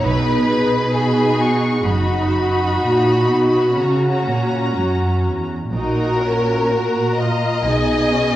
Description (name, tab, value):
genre	classical, slow romantic movement for string orchestra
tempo	58-68 BPM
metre	4/4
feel	rubato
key	B major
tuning	A4 = 439 Hz
part	warm symphonic violin section	melody	0.0-8.4 s	G#5 to C#6	-26 LUFS	left 3 dB	none
part	warm symphonic violin section	second line	0.0-8.4 s	F#4 to D#5	-21 LUFS	left 1 dB	none
part	rich symphonic viola section	accompaniment	0.0-8.4 s	C#4 to G#4	-20 LUFS	right 1 dB	none
part	dark symphonic cello section	bass	0.0-8.4 s	E2 to C#3	-20 LUFS	right 1 dB	none
part	bright symphonic double bass section	bass	0.1-8.4 s	F#1 to B1	-25 LUFS	right 2 dB	none
room	wet scoring stage reverb, RT60 2.0 s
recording	worn, warbling old tape, cassette tape, warbly pitch drift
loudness	-15 LUFS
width	side -13 dB against mid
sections	0.0-8.4 A section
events	none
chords	0.1 B; 1.9 B/F#; 3.8 F#; 5.7 F#/A#; 7.7 G#m/B